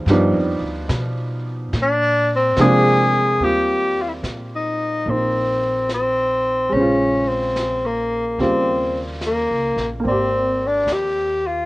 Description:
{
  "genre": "jazz ballad",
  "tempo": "72 BPM",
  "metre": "4/4",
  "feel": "swing 68% on 8ths",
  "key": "Eb major from 3.4 s",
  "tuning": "A4 = 437 Hz",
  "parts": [
    { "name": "clear baby grand piano", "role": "accompaniment", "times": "0.0-11.7 s", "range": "Db3 to D5", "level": "-22 LUFS", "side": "right 1 dB", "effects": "cassette tape" },
    { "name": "upright bass", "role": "bass", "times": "0.0-11.7 s", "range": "Ab1 to C3", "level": "-25 LUFS", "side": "equal", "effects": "none" },
    { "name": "vintage brush drum kit", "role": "drums", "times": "0.1-11.7 s", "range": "brushed snare drum, hi-hat, snare drum", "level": "-34 LUFS", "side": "equal", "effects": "cassette tape" },
    { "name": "clear tenor saxophone", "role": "melody", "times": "1.8-11.7 s", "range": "Bb3 to Ab4", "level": "-18 LUFS", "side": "left 1 dB", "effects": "none" }
  ],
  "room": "small room ambience",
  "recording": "home recording on cassette",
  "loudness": "-17 LUFS",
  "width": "side -20 dB against mid",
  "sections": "0.0-3.4 A section; 3.4-11.7 B section",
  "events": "tenor saxophone solo 0.0-3.4",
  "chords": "0.1 G7b13; 1.7 Bb9; 3.4 Eb69; 6.7 Bbm7; 8.4 Eb7; 10.0 Abmaj9#11"
}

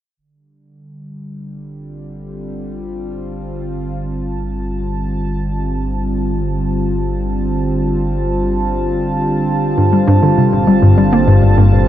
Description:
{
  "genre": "ambient, sequencer-driven space music",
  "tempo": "100 BPM",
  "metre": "4/4",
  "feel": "straight",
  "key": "unclear",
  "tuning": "A4 = 440 Hz",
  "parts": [
    { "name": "sweeping resonant pad", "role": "sustained chords", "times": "0.2-11.9 s", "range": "D3 to A5", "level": "-18 LUFS", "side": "right 1 dB", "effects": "chorus" },
    { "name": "round analog bass", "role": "bass", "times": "0.2-11.9 s", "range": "G1", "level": "-23 LUFS", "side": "equal", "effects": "none" },
    { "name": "hollow square pluck", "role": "riff", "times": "9.8-11.8 s", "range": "G2 to Bb3", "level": "-10 LUFS", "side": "left 1 dB", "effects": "chorus, analog delay" }
  ],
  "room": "moderate huge ambient reverb, RT60 7.5 s",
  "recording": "dark, warm production",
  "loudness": "-13 LUFS",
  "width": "side -12 dB against mid",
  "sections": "0.2-11.9 A section",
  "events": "fade-in on analog synth pad 0.2-11.9; fade-in on analog synth bass 0.2-11.9",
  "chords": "0.2 G7(no3)"
}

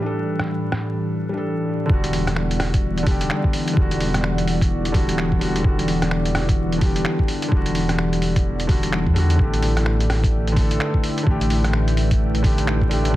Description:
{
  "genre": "future garage",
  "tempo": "128 BPM",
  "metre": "4/4",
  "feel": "swing 61% on 16ths",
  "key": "E minor",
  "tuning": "A4 = 440 Hz",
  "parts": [
    { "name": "felt-muted upright piano", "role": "accompaniment", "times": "0.0-13.2 s", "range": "D3 to B4", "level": "-24 LUFS", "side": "equal", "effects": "sidechain pumping, analog delay" },
    { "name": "warbly tape-like pad", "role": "sustained chords", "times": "0.0-13.2 s", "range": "A2 to G5", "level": "-25 LUFS", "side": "left 1 dB", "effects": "chorus, built-in reverb, sidechain pumping" },
    { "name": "lo-fi sampler-style drum kit", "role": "drums", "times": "0.4-13.1 s", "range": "finger snaps, hi-hat, rim click", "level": "-27 LUFS", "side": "equal", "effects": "soft clipping on snare, low-pass filter on snare, low-pass filter on hats" },
    { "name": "warm sub bass", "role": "bass", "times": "1.9-13.2 s", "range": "E1 to E2", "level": "-22 LUFS", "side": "equal", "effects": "sidechain pumping" },
    { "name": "electronic kick drum", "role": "drums", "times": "1.9-13.2 s", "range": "none", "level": "-19 LUFS", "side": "equal", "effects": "none" }
  ],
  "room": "light reverb",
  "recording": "dense, heavily limited modern master, vinyl crackle",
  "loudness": "-18 LUFS",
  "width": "side -15 dB against mid",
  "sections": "0.0-1.9 A section; 1.9-13.2 B section",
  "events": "none",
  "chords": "0.0 A7sus4; 1.9 Em9; 9.4 A7sus4"
}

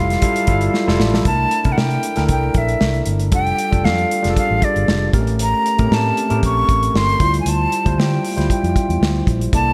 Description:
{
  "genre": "polished 1980s jazz-funk pop",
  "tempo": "116 BPM",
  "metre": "4/4",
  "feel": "swing 54% on 16ths",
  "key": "F major",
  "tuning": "A4 = 441 Hz",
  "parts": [
    { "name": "breathy concert flute", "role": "melody", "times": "0.0-9.7 s", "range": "D5 to C#6", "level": "-22 LUFS", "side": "equal", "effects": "none" },
    { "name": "overdriven tine electric piano", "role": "accompaniment", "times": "0.0-9.7 s", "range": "G3 to D5", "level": "-24 LUFS", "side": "equal", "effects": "subtle chorus" },
    { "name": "vintage muted fingered electric bass", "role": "bass", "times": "0.0-9.7 s", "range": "F1 to D3", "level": "-22 LUFS", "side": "equal", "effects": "none" },
    { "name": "modern studio drum kit", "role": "drums", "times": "0.1-9.7 s", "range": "hi-hat, kick drum, snare drum", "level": "-22 LUFS", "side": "equal", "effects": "gated reverb" }
  ],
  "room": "light reverb, studio reverb",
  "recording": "bright 1980s-style digital production",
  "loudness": "-17 LUFS",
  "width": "mono",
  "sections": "0.0-1.3 A section; 1.3-9.7 B section",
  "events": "drum fill 0.7-1.3",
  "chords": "0.0 Fmaj9; 1.3 C13; 3.3 F69; 5.1 A7b9; 7.2 Dm11"
}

